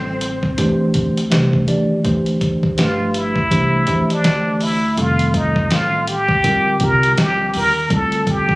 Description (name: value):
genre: hip hop, jazz-hop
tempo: 82 BPM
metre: 4/4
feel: swing 60% on 16ths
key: D minor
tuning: A4 = 440 Hz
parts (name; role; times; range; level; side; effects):
- trumpet with plunger mute; melody; 0.0-8.6 s; D4 to C5; -18 LUFS; equal; none
- breathy tenor saxophone; second line; 0.0-1.3 s; C4; -27 LUFS; left 1 dB; none
- tine electric piano; accompaniment; 0.0-8.6 s; C3 to D5; -19 LUFS; equal; medium stereo tremolo
- upright bass; bass; 0.0-8.6 s; F1 to Eb2; -22 LUFS; equal; none
- dusty soul sampler-style drum kit; drums; 0.2-8.6 s; hi-hat, kick drum, snare drum; -21 LUFS; equal; none
room: light reverb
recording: recorded on a phone in the room, studio ambience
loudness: -14 LUFS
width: side -21 dB against mid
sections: 0.0-2.1 A section; 2.1-8.6 B section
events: muted trumpet solo 2.1-8.6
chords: 0.0 Fadd9; 0.6 Bb69; 1.3 C; 2.1 Dsus2; 2.8 G7; 3.5 C9; 5.0 F9; 6.4 Bb69; 7.9 Dm7